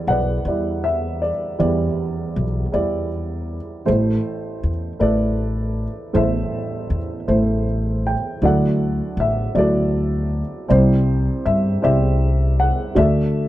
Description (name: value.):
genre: acoustic folk-pop ballad.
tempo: 53 BPM (dotted quarters).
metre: 6/8.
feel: straight.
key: unclear.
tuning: A4 = 440 Hz.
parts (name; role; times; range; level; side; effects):
dark upright piano; melody; 0.0-13.5 s; A1 to G5; -20 LUFS; right 1 dB; none.
upright bass; bass; 0.1-13.5 s; A1 to G2; -20 LUFS; equal; none.
room: light reverb.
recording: nothing above 10.5 kHz.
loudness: -18 LUFS.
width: side -14 dB against mid.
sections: 0.0-8.4 A section; 8.4-13.5 B section.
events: none.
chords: 0.0 Em7; 3.9 Am; 8.4 Dadd9; 10.7 Cadd9; 13.0 D.